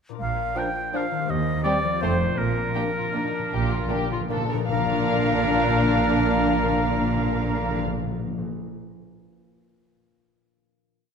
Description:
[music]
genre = classical, orchestral ballroom waltz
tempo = 147-179 BPM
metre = 3/4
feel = rubato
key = Bb major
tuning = A4 = 440 Hz
[part]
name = concert harp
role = arpeggios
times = 0.1-8.7 s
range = Bb2 to F5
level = -33 LUFS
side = left 9 dB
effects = none
[part]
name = clear oboe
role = second line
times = 0.2-7.8 s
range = Bb4 to G5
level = -29 LUFS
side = right 2 dB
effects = none
[part]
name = mellow hollow concert flute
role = second line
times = 0.2-7.8 s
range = Bb4 to Bb5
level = -31 LUFS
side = left 1 dB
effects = none
[part]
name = muted chamber double bass section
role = bass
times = 0.2-7.8 s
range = F1 to Eb2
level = -30 LUFS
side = right 4 dB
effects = none
[part]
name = muted studio cello section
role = bass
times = 0.2-7.8 s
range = Eb2 to Bb2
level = -31 LUFS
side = right 3 dB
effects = none
[part]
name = muted studio violin section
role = melody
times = 0.6-7.8 s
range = D4 to F5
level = -30 LUFS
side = left 4 dB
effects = none
[part]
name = muted symphonic violin section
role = second line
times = 0.6-7.8 s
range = C4 to D4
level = -34 LUFS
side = left 1 dB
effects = none
[part]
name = warm clarinet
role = second line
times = 0.6-7.8 s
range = C4 to D4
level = -33 LUFS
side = equal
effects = none
[part]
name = mellow bassoon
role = accompaniment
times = 0.6-7.8 s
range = F3 to Bb3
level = -32 LUFS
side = right 3 dB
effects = none
[part]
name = muted studio viola section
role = accompaniment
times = 0.6-7.8 s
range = F3 to Bb3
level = -33 LUFS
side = right 1 dB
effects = none
[part]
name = mellow French horn section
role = sustained chords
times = 0.6-7.8 s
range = F3 to D4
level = -32 LUFS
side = left 4 dB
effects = none
[part]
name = timpani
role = percussion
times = 2.4-8.5 s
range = Bb2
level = -29 LUFS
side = left 1 dB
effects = none
[sound]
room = moderate scoring stage reverb, RT60 1.7 s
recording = none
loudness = -21 LUFS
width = side -6 dB against mid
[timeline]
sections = 0.2-4.7 A section; 4.7-7.0 final chord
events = slowing down 1.8-4.7; timpani fill 2.4-4.7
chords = 0.2 Bb; 1.3 Cm/Eb; 2.0 F; 2.4 Bb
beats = | 0.20 0.56 0.94 | 1.29 1.65 2.02 | 2.39 2.76 3.15 | 3.52 3.91 4.31 | 4.70 5.08 5.49 | 5.87 6.26 6.66

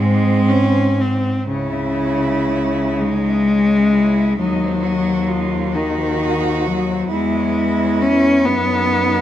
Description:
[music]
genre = classical, lyrical piece for cello ensemble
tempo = 37-46 BPM (dotted quarters)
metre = 6/8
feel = rubato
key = C# minor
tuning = A4 = 439 Hz
[part]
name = rich cello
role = second line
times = 0.0-9.2 s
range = B#3 to Gb4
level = -23 LUFS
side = right 6 dB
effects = none
[part]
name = clear cello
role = accompaniment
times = 0.0-9.2 s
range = C#3 to C#4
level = -16 LUFS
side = left 2 dB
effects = none
[part]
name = rich cello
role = bass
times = 0.0-9.2 s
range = C#2 to G#2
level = -22 LUFS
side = right 2 dB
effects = none
[part]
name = rich cello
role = melody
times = 1.5-9.2 s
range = F#4 to E5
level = -33 LUFS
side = left 6 dB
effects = none
[sound]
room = wet recital hall reverb, RT60 1.8 s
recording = none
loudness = -15 LUFS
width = side -11 dB against mid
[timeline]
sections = 0.0-1.5 A section; 1.5-9.2 B section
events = none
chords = 0.0 G#; 1.5 C#m; 4.4 Cdim/Eb; 7.1 C#m/E; 8.5 F#m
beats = | 1.50 3.03 | 4.40 5.75 | 7.12 8.46

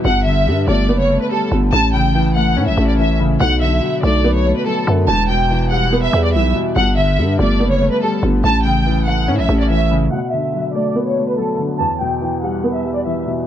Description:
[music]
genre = hip hop, drill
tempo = 143 BPM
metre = 4/4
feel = half-time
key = B minor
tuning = A4 = 440 Hz
[part]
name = warm studio violin section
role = melody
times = 0.0-13.2 s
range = A4 to A5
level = -19 LUFS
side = equal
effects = low-pass filter
[part]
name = felt-muted upright piano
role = accompaniment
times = 0.0-13.5 s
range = E2 to C#4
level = -19 LUFS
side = left 1 dB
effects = low-pass filter
[part]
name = growling 808-style bass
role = bass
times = 0.0-10.1 s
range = E1 to A2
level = -16 LUFS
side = equal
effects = none
[sound]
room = little or no reverb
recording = low-pass filter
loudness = -14 LUFS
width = side -10 dB against mid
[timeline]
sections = 0.0-10.1 A section; 10.1-13.5 B section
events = none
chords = 0.0 Gadd9; 1.7 A; 3.4 Bm7; 5.1 Em; 6.8 Gadd9; 8.4 A; 10.1 Bm7; 11.8 Em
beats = | 0.05 0.47 0.89 1.31 | 1.73 2.15 2.57 2.98 | 3.40 3.82 4.24 4.66 | 5.08 5.50 5.92 6.34 | 6.76 7.18 7.60 8.02 | 8.44 8.86 9.28 9.70 | 10.12 10.54 10.96 11.38 | 11.80 12.22 12.63 13.05

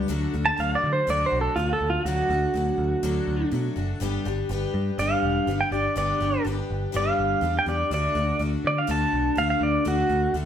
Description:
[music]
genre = folk rock and heartland rock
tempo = 123 BPM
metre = 4/4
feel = straight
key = D major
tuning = A4 = 441 Hz
[part]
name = picked twelve-string acoustic guitar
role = accompaniment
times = 0.0-10.5 s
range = G2 to G4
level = -28 LUFS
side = left 3 dB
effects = none
[part]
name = picked electric bass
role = bass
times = 0.0-10.5 s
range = E1 to D3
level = -27 LUFS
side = equal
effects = none
[part]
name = pedal steel guitar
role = melody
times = 0.5-10.3 s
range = F4 to A5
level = -24 LUFS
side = right 2 dB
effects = slapback echo
[sound]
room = moderate large studio reverb, RT60 0.9 s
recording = band playing live in one room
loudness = -22 LUFS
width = side -9 dB against mid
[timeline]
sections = 0.1-10.5 A section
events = pedal steel guitar solo 0.1-10.5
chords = 0.1 D; 4.0 G; 7.9 D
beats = | 0.10 0.59 1.08 1.57 | 2.06 2.55 3.04 3.53 | 4.02 4.51 4.99 5.48 | 5.97 6.46 6.95 7.44 | 7.92 8.41 8.90 9.39 | 9.88 10.36

